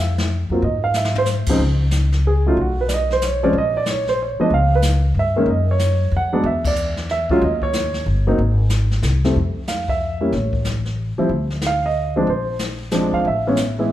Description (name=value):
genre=jazz piano trio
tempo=185 BPM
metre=3/4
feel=swing 64% on 8ths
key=unclear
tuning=A4 = 439 Hz
part: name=upright bass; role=bass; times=0.0-13.9 s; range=G1 to Ab2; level=-20 LUFS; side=left 1 dB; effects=none
part: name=jazz brush drum kit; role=drums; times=0.2-13.9 s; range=brushed snare drum, crash cymbal, hi-hat, kick drum, snare drum, toms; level=-26 LUFS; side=left 2 dB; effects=none
part: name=warm upright piano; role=melody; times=0.5-13.9 s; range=Db2 to Gb5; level=-19 LUFS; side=right 1 dB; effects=none
room=moderate recital hall reverb, RT60 1.4 s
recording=recorded in a church or concert hall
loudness=-16 LUFS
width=side -13 dB against mid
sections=0.0-1.6 A section; 1.6-9.4 B section; 9.4-13.9 A section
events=drum fill 0.9-1.3; band accent 6.6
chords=0.0 F5; 0.6 Ab5; 1.6 N.C.; 2.6 Cbsus2; 3.5 Bb5; 4.5 Db5; 5.5 Gb5; 6.4 E7(no3); 7.4 Eb7(no3); 8.4 N.C.; 9.0 C; 9.4 N.C.; 10.3 A; 11.3 Dm; 12.3 Bb9; 13.2 Amaj7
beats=0.30 | 0.62 0.94 1.27 | 1.59 1.92 2.24 | 2.56 2.89 3.21 | 3.53 3.86 4.18 | 4.50 4.83 5.15 | 5.47 5.80 6.12 | 6.45 6.77 7.09 | 7.42 7.74 8.06 | 8.38 8.71 9.03 | 9.36 9.68 10.00 | 10.33 10.65 10.97 | 11.30 11.62 11.95 | 12.27 12.59 12.92 | 13.24 13.56 13.89